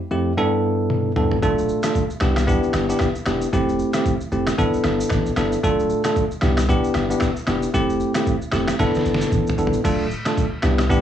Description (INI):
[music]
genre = afrobeats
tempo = 114 BPM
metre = 4/4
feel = swing 58% on 16ths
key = D dorian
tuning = A4 = 440 Hz
[part]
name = bell-like tine electric piano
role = accompaniment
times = 0.1-11.0 s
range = F2 to A4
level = -20 LUFS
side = equal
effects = medium stereo tremolo
[part]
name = trip hop sampler-style drum kit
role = drums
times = 0.9-11.0 s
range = crash cymbal, finger snaps, kick drum, rim click, shaker, snare drum, toms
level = -23 LUFS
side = right 1 dB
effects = overdrive, cassette tape
[part]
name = punchy sub bass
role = bass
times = 1.4-11.0 s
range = D1 to C2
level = -24 LUFS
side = equal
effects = none
[sound]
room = little or no reverb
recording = home recording on cassette, studio reverb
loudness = -18 LUFS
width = side -10 dB against mid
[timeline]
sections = 0.0-9.8 A section; 9.8-11.0 B section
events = drum fill 0.9-1.4, 8.8-9.8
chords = 0.4 G6; 1.4 Dm; 2.2 Cmaj7; 3.5 Fmaj7; 4.6 G6; 5.6 Dm; 6.4 Cmaj7; 7.7 Fmaj7; 8.8 G6; 9.8 Dm